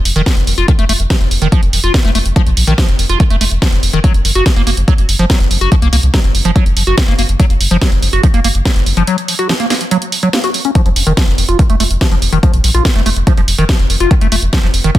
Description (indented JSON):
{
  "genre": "psychedelic trance",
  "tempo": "143 BPM",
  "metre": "4/4",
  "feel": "straight",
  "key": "unclear",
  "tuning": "A4 = 440 Hz",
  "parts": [
    { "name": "round analog bass", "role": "bass", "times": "0.1-14.9 s", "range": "F1 to C2", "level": "-14 LUFS", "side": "equal", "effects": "none" },
    { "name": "techno drum kit", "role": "drums", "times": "0.1-15.0 s", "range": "hi-hat, snare drum", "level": "-18 LUFS", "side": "right 1 dB", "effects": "none" },
    { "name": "liquid acid bass", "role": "riff", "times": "0.2-15.0 s", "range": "Eb3 to Gb4", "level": "-16 LUFS", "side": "moving between left 5 dB and right 6 dB", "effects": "chorus, auto-pan, cassette tape, sidechain pumping, tape echo" },
    { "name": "electronic kick drum", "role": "drums", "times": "0.3-15.0 s", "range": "none", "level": "-12 LUFS", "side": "equal", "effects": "none" }
  ],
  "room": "digital ambience",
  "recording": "dense, heavily limited modern master",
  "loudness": "-10 LUFS",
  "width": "side -14 dB against mid",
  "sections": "0.0-15.0 A section",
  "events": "break 9.1-10.8",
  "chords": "0.0 N.C.; 4.0 Gb5; 10.8 N.C.",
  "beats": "0.26 | 0.68 1.10 1.52 1.94 | 2.36 2.78 3.20 3.62 | 4.04 4.46 4.88 5.30 | 5.72 6.14 6.56 6.98 | 7.40 7.82 8.23 8.65 | 9.07 9.49 9.91 10.33 | 10.75 11.17 11.59 12.01 | 12.43 12.85 13.27 13.69 | 14.11 14.53 14.95"
}